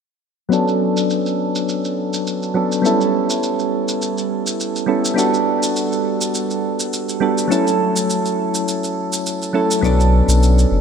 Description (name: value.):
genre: sunset chillout.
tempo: 103 BPM.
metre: 4/4.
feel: swing 54% on 16ths.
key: B minor.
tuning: A4 = 441 Hz.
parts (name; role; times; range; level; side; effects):
soft electric-piano-like synth keys; accompaniment; 0.5-10.8 s; F#3 to A4; -17 LUFS; moving between left 3 dB and right 4 dB; chorus, auto-pan, low-pass filter, ping-pong delay.
shaker; drums; 0.5-10.7 s; none; -26 LUFS; right 2 dB; low-pass filter on perc, low-pass filter on room.
warm sub bass; bass; 9.8-10.8 s; F#1 to B1; -13 LUFS; left 1 dB; none.
electronic kick drum; drums; 9.8-10.0 s; none; -23 LUFS; left 1 dB; none.
room: wet plate reverb, RT60 2.9 s.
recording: bright 1980s-style digital production.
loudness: -16 LUFS.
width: side -6 dB against mid.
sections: 0.5-10.8 A section.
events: filter sweep on synth keys 0.5-10.8.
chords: 0.5 Bm9; 2.8 A9; 5.2 Gmaj9; 7.5 F#m7; 9.8 Bm9.